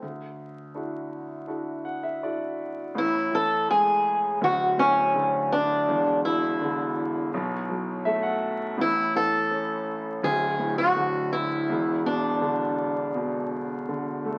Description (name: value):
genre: acoustic folk-pop ballad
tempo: 82 BPM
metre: 4/4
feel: straight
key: A major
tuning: A4 = 438 Hz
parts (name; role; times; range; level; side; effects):
- clear concert grand piano; accompaniment; 0.0-14.4 s; D1 to F#5; -31 LUFS; equal; none
- picked swing-style acoustic guitar; melody; 3.0-13.5 s; C#4 to A4; -26 LUFS; equal; none
room: wet studio reverb, RT60 0.8 s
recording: very old 78 rpm record, vinyl crackle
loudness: -26 LUFS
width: mono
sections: 0.0-2.9 A section; 2.9-14.4 B section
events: none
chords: 0.0 Dadd9; 2.9 A5; 4.4 D5; 5.9 E5; 7.3 B5; 8.8 A; 10.2 D5; 11.7 E7(no3)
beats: | 0.02 0.75 1.48 2.22 | 2.95 3.68 4.41 5.14 | 5.87 6.59 7.32 8.05 | 8.78 9.51 10.23 10.96 | 11.69 12.42 13.15 13.89